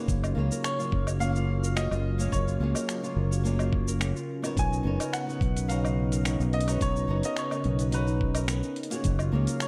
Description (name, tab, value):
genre	sunset chillout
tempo	107 BPM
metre	4/4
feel	straight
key	F# major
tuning	A4 = 440 Hz
part	flamenco guitar	accompaniment	0.0-9.7 s	F#3 to A#5	-38 LUFS	equal	delay
part	lush unison pad	sustained chords	0.0-9.7 s	C#3 to E#5	-36 LUFS	equal	chorus
part	concert harp	arpeggios	0.0-9.7 s	D#4 to C#5	-42 LUFS	equal	delay
part	fingered electric bass	bass	0.1-9.5 s	F#1 to C#2	-30 LUFS	equal	none
part	dusty soul sampler-style drum kit	drums	0.1-9.7 s	finger snaps, hi-hat, shaker, woodblock	-38 LUFS	equal	overdrive
part	electronic kick drum	drums	0.1-9.2 s	none	-32 LUFS	equal	overdrive
part	bright grand piano	melody	0.6-9.7 s	B4 to G#5	-38 LUFS	equal	diffuse ambient delay
room	moderate plate reverb, RT60 1.4 s, digital ambience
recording	dreamy mix soaked in reverb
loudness	-28 LUFS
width	mono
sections	0.0-9.7 A section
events	none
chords	0.0 F#maj7; 4.6 Bmaj9; 8.8 F#maj7